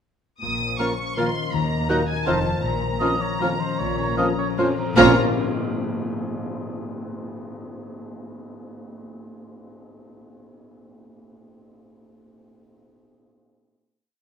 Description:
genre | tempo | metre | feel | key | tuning
classical, orchestral ballroom waltz | 146-176 BPM | 3/4 | rubato | Bb minor | A4 = 443 Hz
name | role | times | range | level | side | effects
rich symphonic violin section | melody | 0.4-5.2 s | Ab5 to Eb6 | -28 LUFS | left 1 dB | none
concert harp | arpeggios | 0.4-6.1 s | Bb2 to F5 | -28 LUFS | left 8 dB | none
dark symphonic cello section | bass | 0.4-5.2 s | Eb2 to Bb2 | -29 LUFS | right 4 dB | none
rich symphonic double bass section | bass | 0.4-5.2 s | F1 to Eb2 | -30 LUFS | right 4 dB | none
clear clarinet | second line | 0.8-5.1 s | Db4 to F4 | -32 LUFS | left 2 dB | none
mellow cor anglais | second line | 0.8-5.1 s | Bb4 to Eb5 | -29 LUFS | right 3 dB | none
mellow hollow silver concert flute | second line | 0.8-5.2 s | F6 to Gb6 | -27 LUFS | left 3 dB | none
warm symphonic violin section | second line | 0.8-5.2 s | F4 to F5 | -29 LUFS | left 2 dB | none
mellow bassoon | accompaniment | 0.8-5.1 s | F3 to Bb3 | -27 LUFS | right 3 dB | none
warm symphonic viola section | accompaniment | 0.8-5.2 s | Bb3 to Gb4 | -26 LUFS | right 2 dB | none
mellow French horn section | sustained chords | 0.8-5.1 s | Bb3 to F4 | -31 LUFS | left 3 dB | none
mellow trombone section | sustained chords | 0.8-5.1 s | F2 to Gb3 | -29 LUFS | right 5 dB | none
cymbal swell and tam-tam | percussion | 2.6-6.4 s | none | -33 LUFS | equal | none
room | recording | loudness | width
moderate scoring stage reverb, RT60 1.9 s | none | -20 LUFS | side -7 dB against mid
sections
0.4-5.0 A section; 5.0-6.1 final chord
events
band accent 5.0-5.3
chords
0.4 Bbm; 1.5 Ebm; 2.3 F7; 2.6 Bbm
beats
| 0.42 0.79 1.17 | 1.53 1.89 2.27 | 2.63 3.01 3.41 | 3.79 4.18 4.58 | 4.97 5.34 5.73

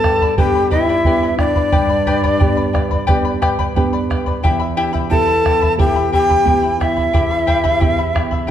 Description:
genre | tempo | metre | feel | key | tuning
andean folk, Andean ensemble | 89 BPM | 4/4 | straight | E minor | A4 = 443 Hz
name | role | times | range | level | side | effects
breathy bright large quena | melody | 0.0-8.5 s | D5 to A5 | -18 LUFS | right 1 dB | none
breathy mellow large pan pipes | second line | 0.0-8.5 s | D4 to A4 | -20 LUFS | left 4 dB | none
charango | accompaniment | 0.0-8.5 s | E4 to B5 | -22 LUFS | left 4 dB | none
nylon-string guitar | accompaniment | 0.0-8.5 s | E2 to G4 | -22 LUFS | right 4 dB | none
bombo | percussion | 0.0-8.5 s | none | -18 LUFS | right 1 dB | none
room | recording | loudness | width
wet recital hall reverb, RT60 1.5 s | recorded in a church or concert hall | -13 LUFS | side -10 dB against mid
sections
0.0-8.5 A section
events
none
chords
0.0 G; 4.4 Em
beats
0.38 1.05 | 1.73 2.40 3.08 3.75 | 4.43 5.11 5.78 6.46 | 7.13 7.81 8.48

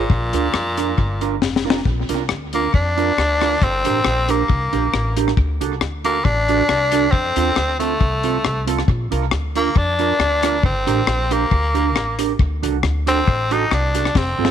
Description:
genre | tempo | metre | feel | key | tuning
ska | 137 BPM | 4/4 | swing 54% on 8ths | Bb major | A4 = 439 Hz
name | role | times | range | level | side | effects
raspy tenor saxophone | melody | 0.0-14.5 s | Bb2 to Eb4 | -19 LUFS | left 1 dB | none
mellow electric guitar | accompaniment | 0.0-14.5 s | C4 to Bb4 | -23 LUFS | right 12 dB | lush chorus, tape echo
upright bass | bass | 0.0-14.5 s | F1 to F2 | -22 LUFS | equal | none
deep reggae drum kit | drums | 0.1-14.5 s | hi-hat, kick drum, rim click, snare drum | -20 LUFS | left 3 dB | tape echo
room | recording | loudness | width
light reverb, studio ambience | 1960s-style stereo | -16 LUFS | side -9 dB against mid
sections
0.0-1.9 A section; 1.9-14.5 B section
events
drum fill 1.4-1.9, 14.1-14.5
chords
0.1 Bb; 3.6 Gm; 5.4 D; 7.1 F; 8.9 Bb; 10.6 Gm; 12.4 D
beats
| 0.10 0.54 0.98 1.42 | 1.86 2.30 2.74 3.18 | 3.62 4.06 4.49 4.93 | 5.37 5.81 6.25 6.69 | 7.13 7.56 8.00 8.44 | 8.88 9.32 9.76 10.20 | 10.63 11.07 11.51 11.95 | 12.39 12.83 13.27 13.71 | 14.15

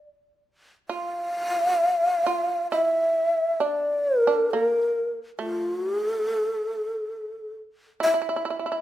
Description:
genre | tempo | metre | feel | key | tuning
japanese traditional, Japanese chamber music | 67 BPM | 4/4 | rubato | unclear | A4 = 440 Hz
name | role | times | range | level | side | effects
breathy mellow long shakuhachi | melody | 0.9-8.8 s | A4 to F5 | -23 LUFS | equal | none
shamisen | second line | 0.9-8.8 s | A3 to F4 | -30 LUFS | right 5 dB | none
room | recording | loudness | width
moderate recital hall reverb, RT60 1.4 s | minimal, uncompressed stereo recording | -22 LUFS | side -13 dB against mid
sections
0.9-8.8 A section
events
none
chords
none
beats
| 0.89 1.80 2.71 3.61 | 4.51 5.38 6.25 7.12 | 8.01

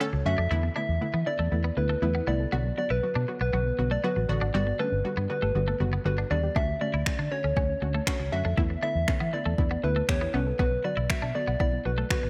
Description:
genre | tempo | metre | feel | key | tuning
dance-pop | 119 BPM | 4/4 | straight | unclear | A4 = 440 Hz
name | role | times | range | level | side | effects
soft struck synth lead | melody | 0.0-12.3 s | B4 to E5 | -33 LUFS | equal | chorus
unison pluck | accompaniment | 0.0-12.3 s | D3 to A4 | -36 LUFS | equal | lush chorus
soft round pluck | arpeggios | 0.0-12.3 s | F#3 to F#5 | -42 LUFS | equal | none
twelve-string electric guitar | riff | 0.0-12.3 s | G3 to E4 | -39 LUFS | equal | subtle chorus
downlifter | sound effects | 0.0-2.5 s | none | barely audible | none | none
vintage muted fingered electric bass | bass | 0.1-12.3 s | F#1 to E3 | -31 LUFS | equal | sidechain pumping
smooth R&B drum kit | drums | 6.6-12.2 s | finger snaps, kick drum | -30 LUFS | equal | overdrive, gated reverb
room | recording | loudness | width
light reverb | bright 1980s-style digital production | -27 LUFS | mono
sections
0.0-12.3 A section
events
none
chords
0.0 Dmaj7; 0.5 E7sus4; 2.5 Bm; 4.5 Gmaj7; 6.6 Dmaj7; 8.6 E7sus4; 10.6 Bm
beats
0.01 | 0.51 1.01 1.52 2.02 | 2.53 3.03 3.53 4.04 | 4.54 5.05 5.55 6.05 | 6.56 7.06 7.57 8.07 | 8.58 9.08 9.59 10.09 | 10.59 11.10 11.60 12.11

